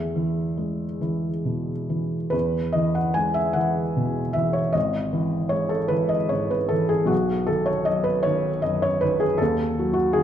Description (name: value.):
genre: classical, romantic nocturne for solo piano.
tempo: 45-53 BPM (dotted quarters).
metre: 12/8.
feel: rubato.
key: E major.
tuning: A4 = 440 Hz.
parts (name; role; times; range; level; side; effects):
felt-muted upright piano; solo; 0.0-10.2 s; G#1 to G#5; -21 LUFS; equal; none.
room: wet recital hall reverb, RT60 1.8 s.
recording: dark, warm production.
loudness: -21 LUFS.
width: side -10 dB against mid.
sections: 0.0-2.3 A section; 2.3-10.2 A section.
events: none.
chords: 0.0 E; 4.8 E/G#; 7.1 B; 9.4 D#dim.